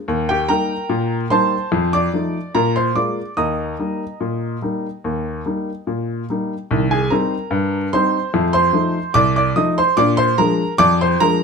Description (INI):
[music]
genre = ragtime piano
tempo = 73 BPM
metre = 2/4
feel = straight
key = Eb major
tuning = A4 = 439 Hz
[part]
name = clear upright piano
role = solo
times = 0.0-11.4 s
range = C2 to Eb6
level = -16 LUFS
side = equal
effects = none
[sound]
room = moderate studio reverb, RT60 0.8 s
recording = close, detailed microphones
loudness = -16 LUFS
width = side -5 dB against mid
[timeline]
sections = 0.0-6.7 A section; 6.7-11.4 B section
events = none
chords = 0.1 Eb; 1.7 F7; 2.5 Bb7; 3.4 Eb; 6.7 Cm; 8.3 F7; 10.0 Bb7